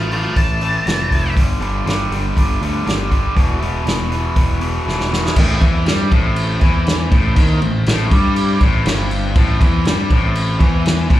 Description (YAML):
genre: blues rock power trio and southern rock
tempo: 120 BPM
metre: 4/4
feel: straight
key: A minor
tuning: A4 = 440 Hz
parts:
  - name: octave-fuzz lead guitar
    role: melody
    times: 0.0-1.3 s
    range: C5 to A5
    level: -21 LUFS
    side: equal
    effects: distortion, slapback echo
  - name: distorted electric guitar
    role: riff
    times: 0.0-11.2 s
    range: E2 to A3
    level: -20 LUFS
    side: equal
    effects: overdrive, slapback echo
  - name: growling fingered electric bass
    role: bass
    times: 0.0-11.2 s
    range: E1 to G2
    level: -19 LUFS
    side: equal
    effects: overdrive
  - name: vintage drum kit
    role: drums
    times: 0.1-11.2 s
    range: crash cymbal, hi-hat, kick drum, snare drum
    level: -16 LUFS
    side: equal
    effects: none
  - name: overdriven tonewheel organ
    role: sustained chords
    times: 5.4-11.2 s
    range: C4 to C5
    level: -30 LUFS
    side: right 3 dB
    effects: slow rotary speaker
room: small room ambience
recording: live gig heard through the venue's PA, club reverb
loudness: -14 LUFS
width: side -14 dB against mid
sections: 0.0-5.4 A section; 5.4-11.2 B section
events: drum fill 4.9-5.4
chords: 0.0 Am; 1.4 G5; 3.4 E5; 5.4 Am